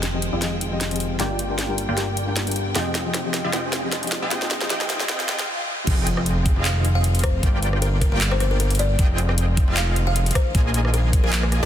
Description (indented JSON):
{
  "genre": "future bass",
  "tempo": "154 BPM",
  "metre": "4/4",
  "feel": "swing 54% on 16ths, half-time",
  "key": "F dorian",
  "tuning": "A4 = 439 Hz",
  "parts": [
    { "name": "warm studio string section", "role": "sustained chords", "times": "0.0-11.7 s", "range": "C3 to G5", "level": "-34 LUFS", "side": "right 1 dB", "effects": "sidechain pumping" },
    { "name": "supersaw stab", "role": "riff", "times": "0.0-11.7 s", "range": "Bb3 to Ab5", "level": "-28 LUFS", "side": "equal", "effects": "sidechain pumping, low-pass filter, dub echo" },
    { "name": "fat analog bass", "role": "bass", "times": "0.0-11.7 s", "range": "F1 to Bb1", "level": "-23 LUFS", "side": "equal", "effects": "sidechain pumping" },
    { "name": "trap drum kit", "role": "drums", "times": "0.0-11.6 s", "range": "crash cymbal, handclaps, hi-hat, rim click, snare drum", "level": "-26 LUFS", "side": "equal", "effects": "high-pass filter on snare, high-pass filter on toms, high-pass filter on hats, high-pass filter on cymbals" },
    { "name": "riser, swell and impact", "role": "sound effects", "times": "0.0-7.4 s", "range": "none", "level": "-34 LUFS", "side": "equal", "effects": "none" },
    { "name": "felt-muted upright piano", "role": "accompaniment", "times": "0.1-5.4 s", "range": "F3 to G5", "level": "-30 LUFS", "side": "left 3 dB", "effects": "sidechain pumping, dub echo" },
    { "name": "electronic kick drum", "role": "drums", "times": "5.9-11.2 s", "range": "none", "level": "-19 LUFS", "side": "equal", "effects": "none" },
    { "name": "buzzing kalimba", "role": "melody", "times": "6.7-11.7 s", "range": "Bb4 to F5", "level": "-29 LUFS", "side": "left 3 dB", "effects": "sidechain pumping, dub echo" }
  ],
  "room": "light reverb, digital ambience",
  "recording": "dense, heavily limited modern master, high-pass filter",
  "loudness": "-19 LUFS",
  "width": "side -10 dB against mid",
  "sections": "0.0-5.9 A section; 5.9-11.7 B section",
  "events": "build-up 0.0-5.9; drum fill 0.0-5.5; filter sweep on supersaw synth 0.0-5.9; filter sweep 0.0-5.9; swell 5.1-5.9; break 5.5-5.9; drop 5.9-11.7; impact 5.9-7.4",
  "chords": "0.0 Fm9; 1.2 Gm7; 2.8 Fm9; 4.1 Bb7sus4; 5.9 Fm9; 7.4 Gm7; 9.0 Fm9; 10.4 Bb7sus4",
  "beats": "0.03 0.42 0.81 | 1.20 1.59 1.98 2.37 | 2.75 3.15 3.53 3.92 | 4.31 4.70 5.09 5.48 | 5.87 6.26 6.65 7.04 | 7.43 7.82 8.21 8.60 | 8.99 9.38 9.77 10.16 | 10.55 10.94 11.33"
}